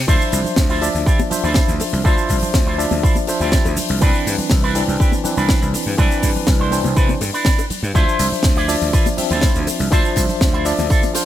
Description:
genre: nu-disco, nu disco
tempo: 122 BPM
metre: 4/4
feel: straight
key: D dorian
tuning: A4 = 442 Hz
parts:
  - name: gritty slap bass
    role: bass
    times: 0.0-10.9 s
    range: C2 to C3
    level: -22 LUFS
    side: equal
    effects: overdrive, tube saturation
  - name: barky tine electric piano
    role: accompaniment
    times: 0.1-11.2 s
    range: E3 to E5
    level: -22 LUFS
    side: left 1 dB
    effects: overdrive, medium stereo tremolo, ping-pong delay
  - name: electric guitar with an envelope filter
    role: riff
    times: 0.1-11.2 s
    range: D4 to F5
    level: -24 LUFS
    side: right 3 dB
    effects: lush chorus, ping-pong delay
  - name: electronic kick drum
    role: drums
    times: 0.1-11.0 s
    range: none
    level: -16 LUFS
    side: equal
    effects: none
  - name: tight funk drum kit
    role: drums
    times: 0.1-11.2 s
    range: hi-hat, shaker, snare drum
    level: -23 LUFS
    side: left 1 dB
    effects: none
  - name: congas, bongos and tambourine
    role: percussion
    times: 0.4-11.2 s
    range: none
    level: -27 LUFS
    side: left 3 dB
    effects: none
room: little or no reverb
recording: none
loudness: -14 LUFS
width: side -12 dB against mid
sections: 0.0-11.2 A section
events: clean electric guitar fill 10.9-11.2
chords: 0.1 Dm9; 4.0 Cmaj9; 8.0 Dm9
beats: | 0.08 0.57 1.07 1.56 | 2.05 2.54 3.03 3.52 | 4.02 4.51 5.00 5.49 | 5.98 6.48 6.97 7.46 | 7.95 8.44 8.94 9.43 | 9.92 10.41 10.90

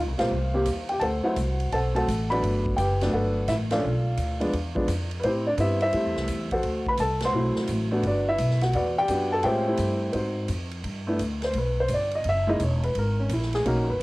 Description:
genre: jazz piano trio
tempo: 171 BPM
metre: 4/4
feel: swing 66% on 8ths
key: G major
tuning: A4 = 439 Hz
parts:
  - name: warm upright piano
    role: melody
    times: 0.0-14.0 s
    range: F3 to C6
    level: -25 LUFS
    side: equal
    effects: none
  - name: upright bass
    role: bass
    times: 0.0-14.0 s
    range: E1 to A2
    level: -27 LUFS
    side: equal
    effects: none
  - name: swinging big-band drum kit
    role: drums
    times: 0.2-14.0 s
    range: hi-hat, kick drum, ride cymbal, snare drum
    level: -36 LUFS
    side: equal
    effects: none
room: small room ambience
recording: home recording on cassette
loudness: -23 LUFS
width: side -20 dB against mid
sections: 0.0-10.8 A section; 10.8-14.0 B section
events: band accent 0.1, 3.7, 7.2; upright piano solo 10.8-14.0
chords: 0.0 Eb69; 1.0 D7; 2.4 Gmaj9; 3.8 Bm7b5; 4.5 E7(no3); 5.2 Am7; 6.6 D13; 8.0 Gmaj7; 8.7 Em9; 9.4 Am7; 10.1 Ab7; 10.8 G; 12.2 F#9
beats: 0.32 0.67 | 1.02 1.37 1.72 2.08 | 2.43 2.78 3.13 3.48 | 3.83 4.18 4.53 4.88 | 5.23 5.58 5.93 6.29 | 6.64 6.99 7.34 7.69 | 8.04 8.39 8.74 9.09 | 9.44 9.79 10.14 10.50 | 10.85 11.20 11.55 11.90 | 12.25 12.60 12.95 13.30 | 13.65 14.00

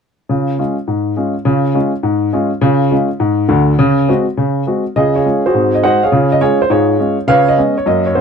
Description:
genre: jazz, stride piano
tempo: 206 BPM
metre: 4/4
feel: swing 60% on 8ths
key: Db major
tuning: A4 = 440 Hz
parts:
  - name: warm upright piano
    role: solo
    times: 0.3-8.2 s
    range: D2 to Gb5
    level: -11 LUFS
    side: equal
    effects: none
room: light reverb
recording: close, detailed microphones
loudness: -12 LUFS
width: side -6 dB against mid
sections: 0.3-5.0 A section; 5.0-8.2 B section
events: none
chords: 0.3 Db; 3.8 Ab7/Db; 5.0 Db; 5.5 Ab7; 6.1 Db; 7.3 Db7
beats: | 0.30 0.59 0.88 1.17 | 1.46 1.75 2.04 2.34 | 2.63 2.92 3.21 3.50 | 3.79 4.08 4.37 4.66 | 4.95 5.24 5.53 5.82 | 6.12 6.41 6.70 6.99 | 7.28 7.57 7.86 8.15

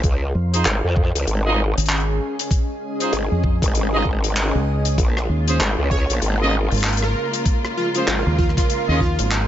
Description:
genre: glitch hop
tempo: 97 BPM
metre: 4/4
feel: swing 61% on 16ths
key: Bb minor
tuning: A4 = 440 Hz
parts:
  - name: growl bass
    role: bass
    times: 0.0-8.2 s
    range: Ab1 to F2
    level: -20 LUFS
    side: equal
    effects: chorus
  - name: electronic kick drum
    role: drums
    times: 0.0-9.2 s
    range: none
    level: -20 LUFS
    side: equal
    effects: none
  - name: tight metal drum kit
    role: drums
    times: 0.0-9.5 s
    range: handclaps, hi-hat, rim click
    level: -25 LUFS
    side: left 2 dB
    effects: none
  - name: granular cloud pad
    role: texture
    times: 0.0-9.5 s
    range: Db4 to C6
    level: -28 LUFS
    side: right 1 dB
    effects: built-in reverb, sidechain pumping
  - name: deep dub fingered electric bass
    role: bass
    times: 0.3-9.5 s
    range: Ab1 to F2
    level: -20 LUFS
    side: equal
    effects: none
  - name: warm horn section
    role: stabs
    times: 0.5-9.0 s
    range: Db4 to Eb5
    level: -25 LUFS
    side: right 2 dB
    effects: sidechain pumping, low-pass filter, digital delay
  - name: rich studio string section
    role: sustained chords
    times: 5.0-9.5 s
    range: Db3 to F4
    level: -28 LUFS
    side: left 1 dB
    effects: sidechain pumping
  - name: plucky unison lead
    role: melody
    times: 5.9-9.5 s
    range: F4 to Db5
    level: -26 LUFS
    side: right 1 dB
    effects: digital delay
room: little or no reverb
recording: nothing above 7.8 kHz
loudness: -17 LUFS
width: side -11 dB against mid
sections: 0.0-9.5 A section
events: none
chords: 0.0 Bbm7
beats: | 0.04 0.66 1.27 1.89 | 2.51 3.13 3.75 4.37 | 4.99 5.60 6.22 6.84 | 7.46 8.08 8.70 9.31

